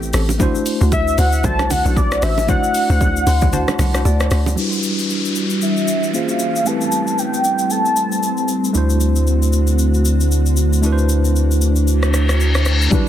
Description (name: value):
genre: amapiano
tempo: 115 BPM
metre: 4/4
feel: swing 58% on 16ths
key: unclear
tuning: A4 = 435 Hz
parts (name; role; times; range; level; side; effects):
- tine electric piano; accompaniment; 0.0-13.1 s; G3 to C6; -22 LUFS; equal; medium stereo tremolo, low-pass filter
- hollow log drum bass; bass; 0.0-4.6 s; A1 to D2; -17 LUFS; equal; none
- deep house drum kit; drums; 0.0-13.1 s; hi-hat, kick drum, rim click, shaker; -22 LUFS; left 1 dB; none
- soft round pluck; stabs; 0.1-4.4 s; C4 to C5; -27 LUFS; left 5 dB; chorus, digital delay
- bongos and congas; percussion; 0.3-4.6, 12.9-13.1 s; none; -26 LUFS; right 6 dB; none
- warm velvety synth lead; melody; 0.9-8.5 s; D5 to A5; -20 LUFS; equal; chorus, low-pass filter, digital delay
- glassy FM pad; sustained chords; 5.1-12.9 s; D3 to F#4; -23 LUFS; equal; ensemble chorus, built-in reverb, sidechain pumping, low-pass filter
- downlifter and reverse cymbal; sound effects; 4.6-12.9 s; none; -24 LUFS; left 3 dB; none
- saturated sub bass; bass; 8.7-12.9 s; D2; -15 LUFS; equal; none
room: digital ambience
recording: dense, heavily limited modern master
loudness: -14 LUFS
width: side -11 dB against mid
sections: 0.0-4.6 A section; 4.6-12.9 B section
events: drop 0.0-4.6; tine electric piano fill 3.0-4.6; kick muted 3.5-4.6, 11.9-12.9; filter sweep 4.6-12.9; reverse cymbal 12.1-12.9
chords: 0.4 D7; 4.6 Em9; 6.1 A#m7; 6.7 Am7; 8.7 D7